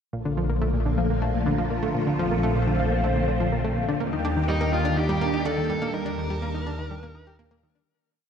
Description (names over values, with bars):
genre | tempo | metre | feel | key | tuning
ambient, sequencer-driven space music | 124 BPM | 4/4 | straight | Bb major | A4 = 440 Hz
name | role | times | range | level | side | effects
phased string machine | sustained chords | 0.1-7.9 s | D3 to A5 | -27 LUFS | left 1 dB | ensemble chorus, phaser, shimmer reverb
analog pluck | riff | 0.1-7.8 s | Bb2 to G4 | -28 LUFS | equal | chorus, shimmer reverb, ping-pong delay
fat analog bass | bass | 0.1-7.9 s | Bb1 to Eb2 | -28 LUFS | equal | none
bluesy overdriven lead guitar | melody | 4.5-7.4 s | Eb4 to Bb4 | -30 LUFS | left 1 dB | distortion, shimmer reverb, ping-pong delay
room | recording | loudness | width
moderate plate reverb, RT60 2.8 s | none | -22 LUFS | side -7 dB against mid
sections
0.1-7.9 A section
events
fade-out 5.3-7.9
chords
0.1 Bbmaj7; 4.0 Ebmaj7